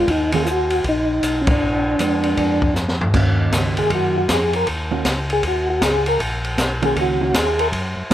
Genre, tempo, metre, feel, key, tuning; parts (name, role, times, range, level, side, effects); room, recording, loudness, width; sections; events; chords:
soul jazz organ trio; 157 BPM; 4/4; swing 64% on 8ths; Eb minor; A4 = 440 Hz
percussive tonewheel organ; melody; 0.0-7.7 s; Db4 to Bb4; -19 LUFS; equal; slow rotary speaker, chorus vibrato
hollow-body jazz guitar; accompaniment; 0.0-8.1 s; Eb3 to Gb4; -23 LUFS; right 5 dB
mellow tonewheel organ; bass; 0.0-8.1 s; Bb1 to Ab2; -25 LUFS; equal; chorus vibrato, slow rotary speaker
open jazz drum kit; drums; 0.1-8.1 s; crash cymbal, hi-hat, kick drum, ride cymbal, snare drum, toms; -20 LUFS; equal
light reverb; -16 LUFS; side -12 dB against mid
0.0-3.1 A section; 3.1-8.1 B section
band accent 1.4; drum fill 2.8-3.1; tonewheel organ solo 3.1-8.1
0.1 Ebm; 1.6 Bb7b9; 3.1 Ebm7